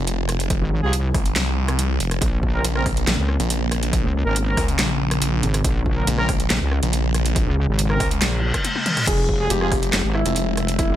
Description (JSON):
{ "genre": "heavy wobble dubstep", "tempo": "140 BPM", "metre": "4/4", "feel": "half-time", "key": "unclear", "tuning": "A4 = 440 Hz", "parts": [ { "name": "lush unison pad", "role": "sustained chords", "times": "0.0-11.0 s", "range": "Db3 to G5", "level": "-29 LUFS", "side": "left 1 dB", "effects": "chorus, sidechain pumping" }, { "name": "snarling distorted saw bass", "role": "bass", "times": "0.0-10.9 s", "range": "F1 to Db2", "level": "-22 LUFS", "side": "equal", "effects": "distortion, overdrive" }, { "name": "dubstep drum kit", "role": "drums", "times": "0.1-10.9 s", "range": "crash cymbal, handclaps, hi-hat, rim click, snare drum, toms", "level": "-25 LUFS", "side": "equal", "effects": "studio reverb" }, { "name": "electronic kick drum", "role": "drums", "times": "0.5-10.9 s", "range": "none", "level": "-23 LUFS", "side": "equal", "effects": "studio reverb" }, { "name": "wobble bass", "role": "bass", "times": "0.6-11.0 s", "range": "F1 to Db2", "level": "-21 LUFS", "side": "equal", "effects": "chorus, overdrive" }, { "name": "mellow brass ensemble", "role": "stabs", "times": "0.8-9.7 s", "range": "C4 to Bb4", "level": "-28 LUFS", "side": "right 2 dB", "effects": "tape echo" }, { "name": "reverse cymbal", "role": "sound effects", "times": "8.4-9.1 s", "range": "none", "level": "-23 LUFS", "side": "left 1 dB", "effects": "none" }, { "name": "warm concert grand piano", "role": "melody", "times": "9.1-11.0 s", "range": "E4 to Ab4", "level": "-24 LUFS", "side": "left 1 dB", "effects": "tape echo" } ], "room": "little or no reverb", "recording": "none", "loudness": "-18 LUFS", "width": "side -12 dB against mid", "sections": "0.0-11.0 A section", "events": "reverse cymbal 8.4-9.1; drum fill 8.6-9.1", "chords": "0.0 Fm; 2.2 Bbmadd9; 9.1 Fmadd9" }